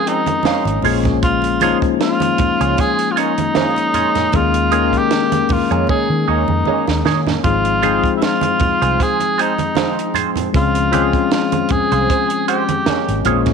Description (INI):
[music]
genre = lush 1970s-style soul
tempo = 77 BPM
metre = 4/4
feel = swing 54% on 16ths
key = unclear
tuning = A4 = 441 Hz
[part]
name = breathy tenor saxophone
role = melody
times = 0.0-13.2 s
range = Eb4 to Ab4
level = -19 LUFS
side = right 1 dB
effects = none
[part]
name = tine electric piano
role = accompaniment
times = 0.0-13.5 s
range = Eb3 to Bb4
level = -19 LUFS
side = left 14 dB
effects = fast stereo tremolo
[part]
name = direct-recorded clean electric guitar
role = riff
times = 0.0-13.5 s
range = Eb4 to F5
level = -22 LUFS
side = right 13 dB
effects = wah
[part]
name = clear trombone section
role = stabs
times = 0.1-13.5 s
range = F3 to Db4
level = -25 LUFS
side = right 12 dB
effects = none
[part]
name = compact cocktail drum kit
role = drums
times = 0.1-13.5 s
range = hi-hat, kick drum, snare drum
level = -21 LUFS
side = right 4 dB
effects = none
[part]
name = congas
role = percussion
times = 0.3-13.5 s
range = none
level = -26 LUFS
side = right 9 dB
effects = none
[part]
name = vintage muted fingered electric bass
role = bass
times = 0.5-13.5 s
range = Ab1 to Eb3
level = -21 LUFS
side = right 1 dB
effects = none
[sound]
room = moderate echo chamber reverb, RT60 1.8 s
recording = 1960s-style stereo with parts hard left and right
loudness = -14 LUFS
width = side -6 dB against mid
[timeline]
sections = 0.0-13.5 A section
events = drum fill 5.9-7.4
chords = 0.0 Dbmaj7; 0.8 Bbm7; 4.3 Eb7sus4; 7.4 Ab6; 10.5 Dbmaj7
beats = 0.45 | 1.23 2.00 2.78 3.56 | 4.33 5.11 5.89 6.66 | 7.44 8.22 8.99 9.77 | 10.54 11.32 12.10 12.87